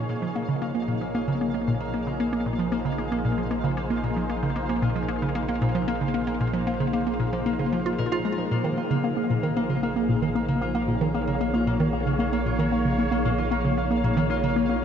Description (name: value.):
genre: ambient, sequencer-driven space music.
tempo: 114 BPM.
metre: 4/4.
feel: straight.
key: Bb minor.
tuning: A4 = 444 Hz.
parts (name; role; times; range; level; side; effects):
sweeping resonant pad; sustained chords; 0.0-14.8 s; F3 to Db5; -30 LUFS; right 1 dB; chorus.
concert harp; arpeggios; 0.0-14.8 s; Bb3 to Bb5; -33 LUFS; left 3 dB; auto-pan, ping-pong delay.
hollow square pluck; riff; 0.0-14.8 s; Bb2 to F4; -25 LUFS; equal; chorus, ping-pong delay.
warm sub bass; bass; 0.0-14.8 s; Bb1; -34 LUFS; equal; none.
pulsing gated texture; texture; 0.0-14.8 s; F5; -38 LUFS; left 2 dB; chorus, built-in reverb.
room: wet huge ambient reverb, RT60 7.5 s.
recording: dreamy mix soaked in reverb, nothing above 7.8 kHz.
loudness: -23 LUFS.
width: side -8 dB against mid.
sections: 0.0-14.8 A section.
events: fade-in on harp 0.0-14.8; fade-in on analog synth pad 0.0-14.8; fade-in on sub bass 0.0-14.8; fade-in on synth texture 0.0-14.8.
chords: 0.0 Bbm.